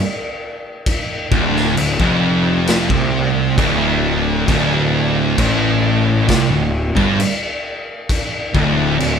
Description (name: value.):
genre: stoner and doom metal.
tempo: 66 BPM.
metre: 4/4.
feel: straight.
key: D minor.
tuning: A4 = 440 Hz.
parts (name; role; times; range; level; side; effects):
raw garage drum kit; drums; 0.9-9.2 s; crash cymbal, kick drum, snare drum; -20 LUFS; left 1 dB; none.
thick fuzz guitar; riff; 1.3-9.2 s; D2 to C3; -21 LUFS; left 11 dB; distortion.
thick fuzz guitar; riff; 1.3-9.2 s; D2 to C3; -19 LUFS; right 7 dB; distortion.
thick fuzz guitar; riff; 1.3-9.2 s; D2 to C3; -21 LUFS; left 1 dB; distortion.
fuzz picked electric bass; bass; 1.3-9.2 s; D1 to C2; -21 LUFS; left 1 dB; overdrive, tube saturation.
room: light reverb.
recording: band playing live in one room.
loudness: -14 LUFS.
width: side -7 dB against mid.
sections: 0.0-9.2 A section.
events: none.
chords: 0.0 Dm.